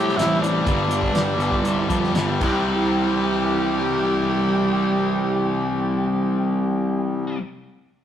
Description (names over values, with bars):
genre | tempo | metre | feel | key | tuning
classic rock | 111-129 BPM | 4/4 | straight | C major | A4 = 438 Hz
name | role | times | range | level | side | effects
growling tenor saxophone | melody | 0.0-7.4 s | D4 to G4 | -26 LUFS | right 1 dB | none
overdriven semi-hollow guitar | riff | 0.0-7.4 s | G2 to G4 | -26 LUFS | right 4 dB | none
tight distorted guitar | riff | 0.0-7.4 s | G2 to C4 | -24 LUFS | left 4 dB | distortion
fuzz picked electric bass | bass | 0.0-7.3 s | G1 to A2 | -24 LUFS | right 1 dB | overdrive
cloth-damped thuddy drum kit | drums | 0.1-2.5 s | crash cymbal, hi-hat, kick drum, snare drum | -27 LUFS | equal | none
octave-fuzz lead guitar | second line | 1.2-7.4 s | G4 to G5 | -34 LUFS | left 2 dB | distortion, slapback echo
room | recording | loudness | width
moderate stone room reverb, RT60 1.3 s | rough rehearsal-room recording, tube saturation | -19 LUFS | side -10 dB against mid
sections
0.0-2.7 A section; 2.7-7.0 B section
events
slowing down 0.0-2.7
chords
0.0 C; 0.7 G; 2.4 C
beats
0.18 | 0.66 1.14 1.64 2.15 | 2.67 3.21 3.75 4.29 | 4.83 5.37 5.91 6.45